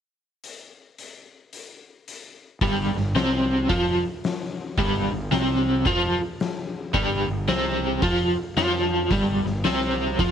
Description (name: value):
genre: blues rock power trio and southern rock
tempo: 111 BPM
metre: 4/4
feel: swing 63% on 8ths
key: unclear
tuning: A4 = 443 Hz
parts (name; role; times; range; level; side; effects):
- oversized low-tuned drum kit; drums; 0.4-10.3 s; hi-hat, kick drum, snare drum; -29 LUFS; left 2 dB; none
- overdriven electric guitar; riff; 2.6-10.3 s; G2 to F4; -22 LUFS; equal; tremolo
- fuzz fingered electric bass; bass; 2.6-10.3 s; G1 to F2; -28 LUFS; right 1 dB; overdrive
room: light reverb, studio ambience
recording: 1960s-style stereo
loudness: -21 LUFS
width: side -8 dB against mid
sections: 0.4-2.6 A section; 2.6-10.3 B section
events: none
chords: 0.4 N.C.; 2.6 G7sus4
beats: | 0.44 0.98 1.52 2.07 | 2.61 3.15 3.70 4.24 | 4.78 5.32 5.87 6.41 | 6.95 7.49 8.03 8.57 | 9.11 9.65 10.20